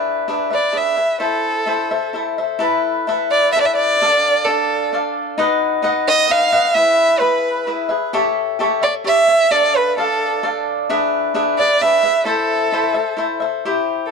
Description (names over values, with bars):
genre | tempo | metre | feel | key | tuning
mexican folk, mariachi | 131 BPM | 3/4 | rubato | A harmonic minor | A4 = 440 Hz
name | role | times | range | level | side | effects
cavaquinho | accompaniment | 0.0-14.1 s | D4 to F#5 | -18 LUFS | left 3 dB | none
rich violin | melody | 0.5-14.1 s | A4 to F5 | -15 LUFS | right 2 dB | none
room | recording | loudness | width
light reverb | dry, close 1970s-style studio recording | -15 LUFS | side -5 dB against mid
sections
0.0-2.6 A section; 2.6-13.7 A section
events
none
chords
0.0 E7; 1.2 Am; 2.6 Asus2; 4.0 Dm; 5.4 B; 6.7 E; 8.1 A7; 9.5 Dm; 10.9 E7; 12.3 Am